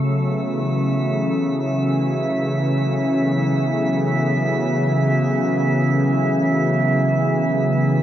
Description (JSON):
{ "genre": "ambient", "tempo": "free time", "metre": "none", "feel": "none", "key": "unclear", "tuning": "A4 = 436 Hz", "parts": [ { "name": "warm analog pad", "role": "sustained chords", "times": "0.0-8.0 s", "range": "C#3 to G#5", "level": "-18 LUFS", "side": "equal", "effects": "lush chorus" }, { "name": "organ-like drone", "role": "drone", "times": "0.0-8.0 s", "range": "A3", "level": "-31 LUFS", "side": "equal", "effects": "ensemble chorus, built-in reverb" }, { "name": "drifting glass-harmonics texture", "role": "texture", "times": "0.2-8.0 s", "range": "E5", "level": "-25 LUFS", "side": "right 2 dB", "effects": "chorus, built-in reverb" } ], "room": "wet huge ambient reverb, RT60 7.7 s", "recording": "none", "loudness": "-17 LUFS", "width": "side -11 dB against mid", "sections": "0.0-8.0 A section", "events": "none", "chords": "0.0 C#m7" }